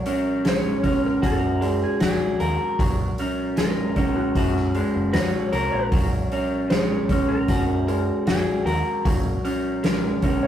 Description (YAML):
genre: psychedelic rock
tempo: 77 BPM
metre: 4/4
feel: straight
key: Gb major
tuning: A4 = 439 Hz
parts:
  - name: electric guitar through a small old amp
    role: riff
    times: 0.0-10.5 s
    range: Gb3 to Bb4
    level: -23 LUFS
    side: equal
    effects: phaser
  - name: soft-mallet drum kit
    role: drums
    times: 0.1-10.4 s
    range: hi-hat, kick drum, snare drum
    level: -25 LUFS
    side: equal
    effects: none
  - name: electric slide guitar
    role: melody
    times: 0.5-10.5 s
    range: Gb4 to Db5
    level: -29 LUFS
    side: equal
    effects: none
  - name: growling picked electric bass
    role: bass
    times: 1.2-9.4 s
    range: Gb1 to Gb2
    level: -27 LUFS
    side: equal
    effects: overdrive
room: moderate studio reverb, RT60 0.6 s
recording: rough rehearsal-room recording, tube saturation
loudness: -20 LUFS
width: side -10 dB against mid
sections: 0.0-10.5 A section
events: none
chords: 0.0 Gbadd9